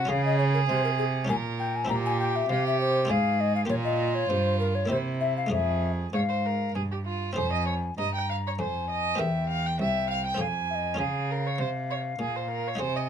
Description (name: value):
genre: classical, baroque-style sonata movement with continuo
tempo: 100 BPM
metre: 3/4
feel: straight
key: F minor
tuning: A4 = 440 Hz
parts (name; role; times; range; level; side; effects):
- mellow hollow tenor recorder; melody; 0.0-13.1 s; Ab4 to Bb5; -30 LUFS; left 5 dB; none
- dark violin; second line; 0.0-13.1 s; E4 to Ab5; -30 LUFS; right 5 dB; none
- buff-stop harpsichord; accompaniment; 0.0-13.1 s; C2 to Bb4; -32 LUFS; left 1 dB; none
- rich cello; bass; 0.0-13.1 s; C2 to Db3; -29 LUFS; right 2 dB; none
room: light reverb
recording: close, detailed microphones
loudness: -25 LUFS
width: side -8 dB against mid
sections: 0.0-7.4 A section; 7.4-13.1 B section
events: none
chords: 0.1 Db; 1.3 Gm7b5/Bb; 1.9 C7/Bb; 3.1 Fm/Ab; 3.7 Gm7b5; 4.9 C7; 5.5 Fm; 9.2 C7/E; 10.4 Fm; 11.0 Db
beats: | 0.10 0.70 1.30 | 1.90 2.50 3.10 | 3.70 4.30 4.91 | 5.52 6.14 6.75 | 7.37 7.98 8.58 | 9.19 9.79 10.39 | 10.99 11.59 12.19 | 12.80